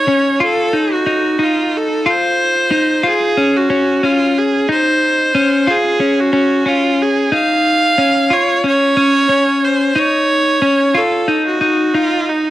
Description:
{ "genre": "dream pop", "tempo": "91 BPM", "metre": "4/4", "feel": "straight", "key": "unclear", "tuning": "A4 = 440 Hz", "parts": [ { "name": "bright viola", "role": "melody", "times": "0.0-12.5 s", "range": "Eb4 to F5", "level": "-15 LUFS", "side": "right 2 dB", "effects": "none" }, { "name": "semi-hollow electric guitar", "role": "arpeggios", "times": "0.0-12.5 s", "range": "Db4 to F4", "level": "-14 LUFS", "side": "left 1 dB", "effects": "analog chorus, tape echo" } ], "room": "light reverb, small room ambience", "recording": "transformer saturation, cassette tape", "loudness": "-12 LUFS", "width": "side -14 dB against mid", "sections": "0.0-12.5 A section", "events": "none", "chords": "0.4 F5; 3.0 Dbadd9; 10.9 Ebmadd9" }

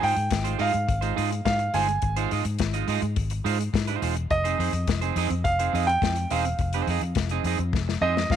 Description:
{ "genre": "disco", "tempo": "105 BPM", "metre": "4/4", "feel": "straight", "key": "unclear", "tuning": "A4 = 440 Hz", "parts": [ { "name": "warm grand piano", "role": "melody", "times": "0.0-8.4 s", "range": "Eb5 to Ab5", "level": "-26 LUFS", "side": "right 2 dB", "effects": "none" }, { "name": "clean electric guitar", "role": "accompaniment", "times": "0.0-8.3 s", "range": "Ab3 to Eb5", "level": "-29 LUFS", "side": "right 15 dB", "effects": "none" }, { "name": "vintage muted fingered electric bass", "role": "bass", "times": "0.0-8.4 s", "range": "E1 to Ab2", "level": "-27 LUFS", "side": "left 1 dB", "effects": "none" }, { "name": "warm soul drum kit", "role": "drums", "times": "0.0-8.4 s", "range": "hi-hat, kick drum, snare drum", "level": "-29 LUFS", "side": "left 5 dB", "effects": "none" } ], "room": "little or no reverb", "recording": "1960s-style stereo", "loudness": "-23 LUFS", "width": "side -9 dB against mid", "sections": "0.0-8.4 A section", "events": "drum fill 7.7-8.4", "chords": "0.0 Ab6" }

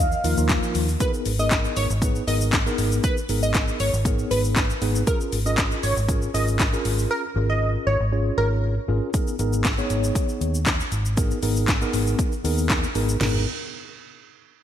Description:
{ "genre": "dance-pop", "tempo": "118 BPM", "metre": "4/4", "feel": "straight", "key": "G# dorian", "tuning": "A4 = 442 Hz", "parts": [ { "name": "warm velvety synth lead", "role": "melody", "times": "0.0-0.8 s", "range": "E#5", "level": "-28 LUFS", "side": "right 1 dB", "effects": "chorus, ping-pong delay" }, { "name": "mellow tine electric piano", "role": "accompaniment", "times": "0.0-13.4 s", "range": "E#3 to C#5", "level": "-27 LUFS", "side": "left 1 dB", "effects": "medium stereo tremolo, sidechain pumping, low-pass filter" }, { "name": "vintage muted fingered electric bass", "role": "bass", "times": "0.0-13.4 s", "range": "G#1 to D#2", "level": "-24 LUFS", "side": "equal", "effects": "sidechain pumping" }, { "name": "house drum kit", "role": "drums", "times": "0.1-13.3 s", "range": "crash cymbal, handclaps, hi-hat, kick drum, shaker, snare drum, toms", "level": "-24 LUFS", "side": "equal", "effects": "overdrive" }, { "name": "plucky unison lead", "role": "melody", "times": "1.0-8.5 s", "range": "A#4 to D#5", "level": "-27 LUFS", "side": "right 1 dB", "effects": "ping-pong delay" } ], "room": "light reverb, digital ambience", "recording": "bright 1980s-style digital production", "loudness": "-20 LUFS", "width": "side -10 dB against mid", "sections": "0.0-1.0 A section; 1.0-9.1 B section; 9.1-13.2 C section; 13.2-14.6 D section", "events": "drums muted 7.1-9.1; filter sweep on tine electric piano 9.1-13.2", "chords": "0.0 D#sus2; 1.0 G#madd9; 5.1 C#6/G#; 9.1 G#madd9" }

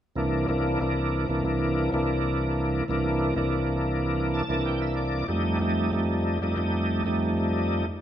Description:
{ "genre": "blues", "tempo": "94 BPM", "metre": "4/4", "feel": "straight", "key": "C mixolydian", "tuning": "A4 = 440 Hz", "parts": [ { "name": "bright tonewheel organ", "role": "accompaniment", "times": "0.2-7.9 s", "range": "C2 to A5", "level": "-23 LUFS", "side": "equal", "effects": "slow rotary speaker, overdrive, chorus vibrato" } ], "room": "wet stone room reverb, RT60 1.4 s", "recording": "band playing live in one room", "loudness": "-24 LUFS", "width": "side -10 dB against mid", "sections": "0.2-8.0 A section", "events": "tonewheel organ fill 4.0-5.3", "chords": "0.2 C7; 5.3 F7" }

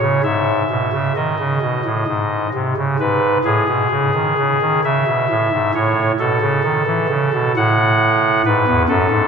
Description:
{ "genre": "classical, chorale-style piece for pipe organ", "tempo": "66 BPM", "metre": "3/4", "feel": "rubato", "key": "unclear", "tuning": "A4 = 440 Hz", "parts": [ { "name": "pipe organ, soft reed", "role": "solo", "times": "0.0-9.3 s", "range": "E2 to F#5", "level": "-14 LUFS", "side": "equal", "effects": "none" } ], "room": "wet cathedral reverb, RT60 4.9 s", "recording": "none", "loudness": "-15 LUFS", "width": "side -6 dB against mid", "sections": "0.0-9.3 A section", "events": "none", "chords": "0.2 G#sus4; 2.1 G#; 3.0 G#m; 4.8 C#m7; 5.7 Aadd9; 7.6 N.C.; 8.4 E" }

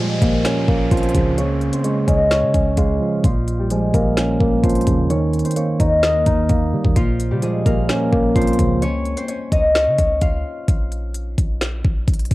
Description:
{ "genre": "hip hop, trap", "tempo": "129 BPM", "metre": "4/4", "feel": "half-time", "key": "Bb dorian", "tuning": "A4 = 440 Hz", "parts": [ { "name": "Celtic harp", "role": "melody", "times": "0.0-12.3 s", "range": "F3 to F5", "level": "-21 LUFS", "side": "left 2 dB", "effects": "low-pass filter, cassette tape" }, { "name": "tine electric piano", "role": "accompaniment", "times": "0.0-8.8 s", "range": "Bb2 to Eb5", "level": "-19 LUFS", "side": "right 2 dB", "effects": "low-pass filter, cassette tape" }, { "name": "downlifter", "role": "sound effects", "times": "0.0-3.2 s", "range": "none", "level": "-33 LUFS", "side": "equal", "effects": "none" }, { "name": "clean 808-style bass", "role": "bass", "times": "0.2-12.3 s", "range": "Bb1 to Eb3", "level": "-23 LUFS", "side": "equal", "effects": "none" }, { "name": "trap drum kit", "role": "drums", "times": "0.2-12.3 s", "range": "hi-hat, kick drum, snare drum", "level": "-20 LUFS", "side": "equal", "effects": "overdrive, cassette tape" } ], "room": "light reverb", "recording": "home recording on cassette", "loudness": "-16 LUFS", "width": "side -18 dB against mid", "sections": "0.0-12.3 A section", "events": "break 8.8-12.3", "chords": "0.0 Bbm; 1.4 Db; 3.2 Bbm; 5.1 Eb; 7.0 Bbm; 8.8 Db; 10.7 N.C." }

